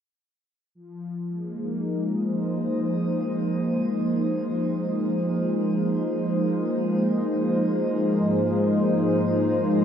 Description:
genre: ambient.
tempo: free time.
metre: none.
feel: none.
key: Ab major.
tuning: A4 = 439 Hz.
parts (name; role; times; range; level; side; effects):
warm analog pad; sustained chords; 0.7-9.8 s; Ab2 to C5; -22 LUFS; equal; chorus, shimmer reverb.
analog drone; drone; 6.4-9.8 s; Ab3; -34 LUFS; left 1 dB; none.
room: wet cathedral reverb, RT60 7.0 s.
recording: none.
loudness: -22 LUFS.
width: side -8 dB against mid.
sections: 0.8-9.8 A section.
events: filter sweep on analog synth pad 0.8-9.8.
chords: 0.8 Ab; 8.2 Ab69.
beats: free time.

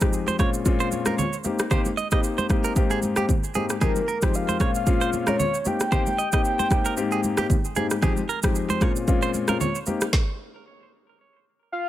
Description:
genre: afrobeats.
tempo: 114 BPM.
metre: 4/4.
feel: swing 55% on 16ths.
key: unclear.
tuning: A4 = 440 Hz.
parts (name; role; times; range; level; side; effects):
warm baby grand piano; accompaniment; 0.0-10.0 s; F2 to G4; -26 LUFS; left 5 dB; none.
afro-pop drum kit; drums; 0.0-10.3 s; kick drum, rim click, shaker, snare drum; -24 LUFS; right 1 dB; none.
direct-recorded clean electric guitar; riff; 0.3-9.8 s; G4 to Eb5; -30 LUFS; right 6 dB; tape echo.
congas; percussion; 0.3-10.0 s; none; -31 LUFS; right 2 dB; none.
soft octave-layered synth lead; melody; 3.8-7.8, 11.7-11.9 s; Bb4 to G5; -27 LUFS; left 1 dB; chorus.
room: digital ambience.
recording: none.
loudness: -21 LUFS.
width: side -13 dB against mid.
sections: 0.0-11.9 A section.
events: stop 10.1-11.9.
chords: 0.4 Bbm9; 1.4 Cm7; 2.8 Abmaj7; 3.8 Fm9; 4.6 Bbm9; 5.7 Cm7; 7.0 Abmaj7; 8.0 Fm9; 8.8 Bbm9; 9.9 Cm7; 11.2 N.C..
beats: 0.13 0.66 1.18 | 1.71 2.23 2.76 3.29 | 3.81 4.34 4.87 5.39 | 5.92 6.45 6.97 7.50 | 8.03 8.55 9.08 9.60 | 10.13 10.66 11.18 11.71.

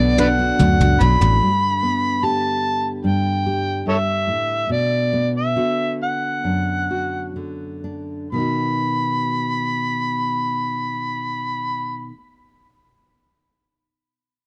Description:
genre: acoustic folk-pop ballad.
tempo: 61-74 BPM.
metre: 4/4.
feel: straight.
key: B minor.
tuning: A4 = 440 Hz.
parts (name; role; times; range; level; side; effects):
overdriven harmonica; melody; 0.0-12.1 s; A4 to B5; -23 LUFS; equal; none.
nylon-string guitar; accompaniment; 0.0-12.2 s; F#2 to G4; -25 LUFS; equal; none.
picked steel-string acoustic guitar; arpeggios; 0.0-1.5 s; F#3 to D4; -29 LUFS; equal; none.
fingered electric bass; bass; 0.0-1.4 s; A1 to D2; -20 LUFS; equal; none.
toms; drums; 0.2-1.4 s; none; -27 LUFS; equal; none.
room: little or no reverb.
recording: dark, warm production.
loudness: -20 LUFS.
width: mono.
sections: 0.0-1.4 A section; 1.4-8.3 B section; 8.3-12.2 C section.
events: drum fill 0.0-1.4; slowing down 1.4-8.3.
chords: 0.0 Bm; 1.4 Gadd9; 4.7 Bm; 8.3 B.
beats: 0.60 | 1.42 2.23 3.04 3.87 | 4.70 5.56 6.44 7.37 | 8.33 9.30 10.26 11.22.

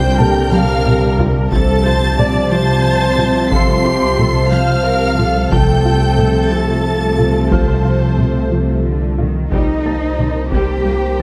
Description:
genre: cinematic, hybrid orchestral and electronic film score.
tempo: 60 BPM (dotted quarters).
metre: 6/8.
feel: straight.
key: unclear.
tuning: A4 = 440 Hz.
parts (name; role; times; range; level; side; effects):
clear symphonic violin section; melody; 0.0-11.2 s; Eb5 to C7; -28 LUFS; equal; none.
warm symphonic violin section; second line; 0.0-11.2 s; A4 to C6; -26 LUFS; equal; none.
rich studio viola section; accompaniment; 0.0-11.2 s; G3 to D5; -25 LUFS; equal; none.
clear trombone section; sustained chords; 0.0-11.2 s; C3 to G3; -27 LUFS; equal; none.
dark French horn section; sustained chords; 0.0-11.2 s; Bb2 to C5; -25 LUFS; equal; none.
ethereal airy pad; sustained chords; 0.0-11.2 s; Bb2 to A5; -27 LUFS; equal; none.
soft round pluck; arpeggios; 0.0-11.2 s; C3 to F4; -28 LUFS; equal; none.
dark symphonic cello section; bass; 0.0-11.2 s; C3 to G4; -22 LUFS; equal; none.
rich symphonic double bass section; bass; 0.0-11.2 s; C2; -22 LUFS; equal; none.
warm sub bass; bass; 0.0-11.2 s; C2; -24 LUFS; equal; none.
dark grand piano; texture; 0.0-11.2 s; A4 to A6; -31 LUFS; equal; none.
taiko ensemble; drums; 0.2-11.1 s; none; -22 LUFS; equal; none.
room: light reverb.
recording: close, detailed microphones.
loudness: -15 LUFS.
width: mono.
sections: 0.0-9.5 A section; 9.5-11.2 B section.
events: drum fill 0.5-1.5.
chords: 0.0 Gm7; 1.5 F/C; 9.5 Cm7.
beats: 0.52 | 1.52 2.52 | 3.52 4.52 | 5.52 6.52 | 7.52 8.52 | 9.52 10.52.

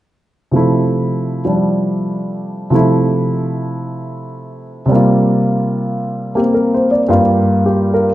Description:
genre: solo jazz.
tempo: 109 BPM.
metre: 4/4.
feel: swing 68% on 8ths, rubato.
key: F major.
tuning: A4 = 440 Hz.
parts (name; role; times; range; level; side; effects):
warm baby grand piano; solo; 0.5-8.1 s; G2 to D5; -13 LUFS; equal; none.
room: wet recital hall reverb, RT60 1.5 s.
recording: recorded in a church or concert hall, nothing above 10.7 kHz.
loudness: -13 LUFS.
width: side -14 dB against mid.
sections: 0.5-8.1 A section.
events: none.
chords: 0.5 Fmaj9/C; 4.9 C7sus4; 7.1 Gm7.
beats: | 0.52 1.08 1.63 2.18 | 2.72 3.27 3.81 4.36 | 4.90 5.44 5.99 6.54 | 7.09 7.65.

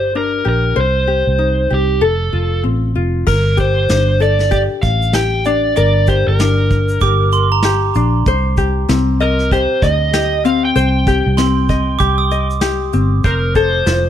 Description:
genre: acoustic pop.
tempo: 96 BPM.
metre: 4/4.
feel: swing 60% on 16ths.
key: unclear.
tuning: A4 = 440 Hz.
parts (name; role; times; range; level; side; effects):
overdriven slide guitar; melody; 0.0-14.1 s; G4 to G5; -18 LUFS; right 1 dB; none.
ukulele; accompaniment; 0.0-14.1 s; C4 to Eb5; -19 LUFS; left 6 dB; none.
vintage muted fingered electric bass; bass; 0.0-14.1 s; F1 to D2; -16 LUFS; right 1 dB; none.
vintage brush drum kit; drums; 3.3-14.0 s; crash cymbal, kick drum, shaker, snare drum; -20 LUFS; right 1 dB; none.
glockenspiel with soft plastic mallets; second line; 7.0-13.1 s; Bb5 to Eb6; -21 LUFS; right 9 dB; tape echo.
room: little or no reverb.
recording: none.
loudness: -12 LUFS.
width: side -10 dB against mid.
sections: 0.0-3.3 A section; 3.3-14.1 B section.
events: none.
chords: 0.0 Gm; 0.8 Cm; 2.0 F; 3.3 Gmadd9; 8.3 Cm; 13.2 F.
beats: 0.15 | 0.78 1.40 2.03 2.65 | 3.27 3.90 4.52 5.15 | 5.77 6.39 7.02 7.64 | 8.26 8.88 9.51 10.13 | 10.75 11.37 12.00 12.62 | 13.24 13.87.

